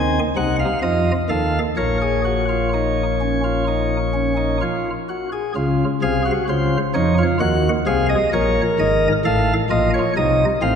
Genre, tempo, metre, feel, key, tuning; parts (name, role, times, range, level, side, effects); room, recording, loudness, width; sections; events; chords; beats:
classical, baroque-style 3-part fugue for pipe organ; 65 BPM; 4/4; straight; Bb minor; A4 = 440 Hz
chamber organ, sparkling flutes; solo; 0.0-10.8 s; Ab1 to Ab5; -16 LUFS; equal
wet church reverb, RT60 2.7 s; minimal, uncompressed stereo recording; -17 LUFS; side -7 dB against mid
0.0-5.6 A section; 5.6-10.8 B section
0.0 Cdim/Eb; 0.8 F7; 1.8 Bbm; 5.6 Dbmaj9/C; 7.4 Ebm; 9.2 F7/A
0.82 | 1.76 2.72 3.67 4.61 | 5.55 6.48 7.40 8.32 | 9.24 10.16